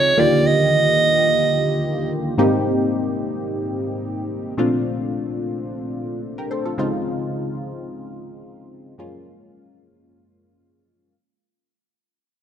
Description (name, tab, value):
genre	funk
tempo	free time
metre	none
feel	none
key	unclear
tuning	A4 = 441 Hz
part	breathy alto saxophone	melody	0.0-2.1 s	Db5 to Eb5	-17 LUFS	right 3 dB	slapback echo
part	funky polysynth comp	accompaniment	0.0-11.2 s	Gb2 to C5	-21 LUFS	left 1 dB	chorus
room	light reverb, small room reverb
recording	rough home demo mix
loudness	-18 LUFS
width	side -9 dB against mid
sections	0.0-2.4 A section; 2.4-11.2 B section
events	fade-out 2.4-11.2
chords	0.2 Ebmaj9; 2.4 Abmaj9; 4.6 Bbmaj9; 6.8 Dbmaj9; 9.0 Gbmaj9